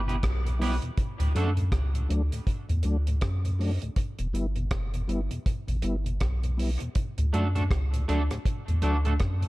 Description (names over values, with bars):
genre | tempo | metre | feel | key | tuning
dub reggae | 80 BPM | 4/4 | swing 60% on 16ths | unclear | A4 = 436 Hz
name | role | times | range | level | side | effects
soft dub sub bass | bass | 0.0-9.5 s | E1 to F#2 | -26 LUFS | equal | none
electric guitar at the edge of break-up | accompaniment | 0.1-1.5, 7.3-9.1 s | A3 to B4 | -33 LUFS | right 2 dB | analog chorus, dub echo
mellow tonewheel organ | accompaniment | 0.1-9.5 s | D2 to E4 | -34 LUFS | left 1 dB | chorus vibrato
deep reggae drum kit | drums | 0.1-9.5 s | hi-hat, kick drum, rim click | -30 LUFS | equal | none
room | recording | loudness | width
studio ambience | dark, warm production | -25 LUFS | side -19 dB against mid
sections
0.0-9.5 A section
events
none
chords
0.0 Em; 1.0 D; 4.0 Em; 7.0 D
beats
0.23 | 0.98 1.72 2.47 3.22 | 3.97 4.71 5.46 6.21 | 6.96 7.71 8.45 9.20